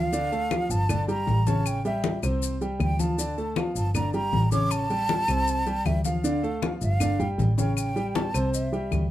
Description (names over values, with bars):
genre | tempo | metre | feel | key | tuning
latin, Cuban son and guajira | 157 BPM | 4/4 | straight | D minor | A4 = 442 Hz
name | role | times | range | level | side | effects
breathy concert flute | melody | 0.0-9.1 s | E5 to D6 | -29 LUFS | right 2 dB | none
dark grand piano | arpeggios | 0.0-9.0 s | C3 to A5 | -29 LUFS | equal | none
warm double bass | bass | 0.0-9.1 s | G1 to D2 | -27 LUFS | equal | none
congas | percussion | 0.1-9.1 s | none | -30 LUFS | left 3 dB | none
maracas | percussion | 0.1-9.1 s | none | -38 LUFS | left 9 dB | none
claves | percussion | 0.5-9.1 s | none | -38 LUFS | left 7 dB | none
room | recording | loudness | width
light reverb | close, detailed microphones | -23 LUFS | side -14 dB against mid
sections
0.0-9.1 A section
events
none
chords
0.1 Dm; 0.9 Gm; 1.7 A7; 2.4 C5; 3.2 Dm; 3.9 Gm; 4.7 A7; 5.5 C5; 6.2 Dm; 7.0 G5; 7.8 A7; 8.5 C